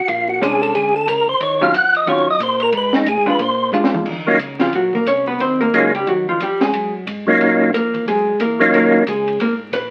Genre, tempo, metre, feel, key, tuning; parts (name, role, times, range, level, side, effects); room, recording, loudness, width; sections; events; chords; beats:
soul jazz organ trio; 180 BPM; 4/4; swing 61% on 8ths; Eb dorian; A4 = 439 Hz
percussive tonewheel organ; melody; 0.0-9.0 s; Gb3 to Gb5; -17 LUFS; equal; slow rotary speaker
tonewheel organ; bass; 0.1-9.9 s; Ab1 to Bb2; -32 LUFS; equal; slow rotary speaker
compact cocktail drum kit; drums; 0.1-9.8 s; crash cymbal, hi-hat, kick drum, ride cymbal, snare drum, toms; -28 LUFS; equal
vintage hollow-body jazz guitar; accompaniment; 0.4-9.9 s; Eb3 to Db5; -20 LUFS; equal
moderate studio reverb, RT60 0.5 s; very old 78 rpm record, vinyl crackle; -17 LUFS; mono
0.0-4.1 A section; 4.1-9.9 A section
tonewheel organ solo 0.0-4.1; drum fill 3.7-4.1; hollow-body jazz guitar solo 4.1-9.9
0.1 Bb7#9; 1.4 Ebm9; 2.7 Fm7b5; 3.4 Bb7; 4.1 Ebm9; 9.4 Abmadd9
| 0.08 0.41 0.74 1.08 | 1.41 1.74 2.07 2.41 | 2.74 3.07 3.40 3.74 | 4.07 4.40 4.73 5.07 | 5.40 5.73 6.07 6.40 | 6.73 7.06 7.40 7.73 | 8.06 8.39 8.73 9.06 | 9.39 9.73